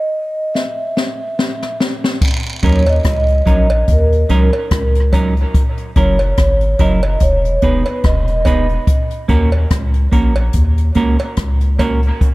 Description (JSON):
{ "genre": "dub reggae", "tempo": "72 BPM", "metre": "4/4", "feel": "swing 56% on 16ths", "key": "Eb phrygian", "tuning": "A4 = 440 Hz", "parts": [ { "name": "vibraphone with soft mallets", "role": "melody", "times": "0.0-8.7 s", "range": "Bb4 to Fb5", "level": "-19 LUFS", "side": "right 1 dB", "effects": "low-pass filter, dub echo" }, { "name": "jazz brush drum kit", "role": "drums", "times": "0.6-12.3 s", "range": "crash cymbal, hi-hat, kick drum, rim click, snare drum", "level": "-16 LUFS", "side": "equal", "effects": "none" }, { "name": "jawbone-type rattle and cowbell", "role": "percussion", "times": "2.2-12.0 s", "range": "none", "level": "-27 LUFS", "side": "right 2 dB", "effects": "dub echo" }, { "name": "semi-hollow electric guitar", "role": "accompaniment", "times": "2.6-12.0 s", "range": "Gb3 to B4", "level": "-20 LUFS", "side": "right 3 dB", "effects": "low-pass filter, dub echo" }, { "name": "soft dub sub bass", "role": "bass", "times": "2.6-12.1 s", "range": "E1 to Eb2", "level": "-15 LUFS", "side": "equal", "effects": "none" } ], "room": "light reverb, small room ambience", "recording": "none", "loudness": "-12 LUFS", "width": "side -20 dB against mid", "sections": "0.0-2.2 A section; 2.2-12.3 B section", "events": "stop 0.0-2.2; filter sweep 0.0-2.2; drum fill 0.6-2.2", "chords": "0.0 N.C.; 2.2 Ebm7; 5.5 Gb7; 7.2 Emaj7; 8.9 Ebm7" }